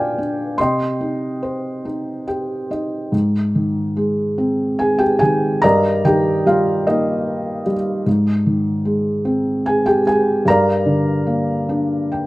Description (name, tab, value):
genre	classical, lyrical solo piano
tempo	46-50 BPM (dotted quarters)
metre	6/8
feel	rubato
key	unclear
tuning	A4 = 440 Hz
part	felt-muted upright piano	solo	0.0-12.3 s	G2 to C6	-16 LUFS	equal	none
room	light reverb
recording	close, detailed microphones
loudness	-16 LUFS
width	side -19 dB against mid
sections	0.0-3.1 A section; 3.1-12.3 B section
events	felt piano fill 1.8-3.1, 11.7-12.3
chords	0.0 Bb6; 0.6 Cm; 3.1 Abmaj7; 5.6 Ebmaj7/G; 8.1 Abmaj7; 10.5 Gm7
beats	| 0.58 1.85 | 3.13 4.39 | 5.64 6.87 | 8.06 9.26 | 10.46 11.69